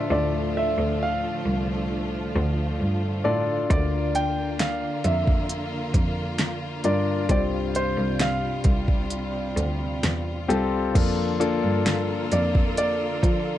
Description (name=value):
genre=pop ballad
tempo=67 BPM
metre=4/4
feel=straight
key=unclear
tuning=A4 = 440 Hz
part: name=warm concert grand piano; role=melody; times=0.0-13.6 s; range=C5 to G5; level=-28 LUFS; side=right 1 dB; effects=none
part: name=warm concert grand piano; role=accompaniment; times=0.0-13.6 s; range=G2 to E5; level=-28 LUFS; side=left 4 dB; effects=none
part: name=warm studio string section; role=sustained chords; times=0.0-13.6 s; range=C3 to A4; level=-31 LUFS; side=right 2 dB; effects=none
part: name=clear cello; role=bass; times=0.0-13.6 s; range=C2 to F3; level=-27 LUFS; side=equal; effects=none
part: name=smooth R&B drum kit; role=drums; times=3.7-13.4 s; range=crash cymbal, hi-hat, kick drum, snare drum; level=-23 LUFS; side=equal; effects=none
room=studio ambience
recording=dark, warm production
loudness=-22 LUFS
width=side -12 dB against mid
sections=0.0-11.0 A section; 11.0-13.6 B section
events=none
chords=0.0 Dm; 3.7 Bb/D; 7.3 Csus4; 11.0 Bbmaj7/F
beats=| 0.11 1.00 1.91 2.81 | 3.70 4.59 5.49 6.39 | 7.29 8.20 9.11 10.03 | 10.95 11.86 12.78